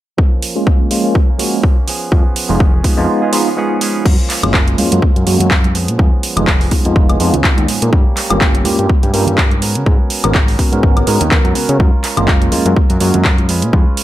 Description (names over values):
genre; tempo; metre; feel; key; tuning
filtered disco house; 124 BPM; 4/4; swing 56% on 16ths; F# major; A4 = 440 Hz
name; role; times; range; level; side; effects
direct-recorded clean electric guitar; riff; 0.2-14.0 s; E#3 to B4; -24 LUFS; right 3 dB; sidechain pumping, low-pass filter
electronic kick drum; drums; 0.2-13.8 s; none; -12 LUFS; equal; overdrive
house drum kit; drums; 0.4-14.0 s; crash cymbal, handclaps, hi-hat, woodblock; -18 LUFS; equal; overdrive, sidechain pumping on hats, sidechain pumping on cymbals, sidechain pumping on perc
bell-like tine electric piano; accompaniment; 0.6-13.2 s; G#3 to Bb4; -18 LUFS; right 1 dB; fast stereo tremolo, phaser, sidechain pumping, low-pass filter
plucky analog bass; bass; 2.1-13.8 s; E#1 to C#3; -17 LUFS; equal; tube saturation, sidechain pumping, low-pass filter
tube shaker and congas; percussion; 4.1-14.0 s; none; -25 LUFS; right 3 dB; none
room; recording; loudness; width
digital ambience; none; -11 LUFS; side -14 dB against mid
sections
0.2-4.1 A section; 4.1-14.0 B section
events
filter sweep 0.2-4.1, 4.1-14.0; kick drops out 3.1-4.1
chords
0.2 F#maj7; 1.9 C#7/E#; 4.1 F#maj7; 5.7 C#7/E#; 7.9 Gm7b5; 9.6 G#m11; 11.8 F#maj7; 13.5 C#7/E#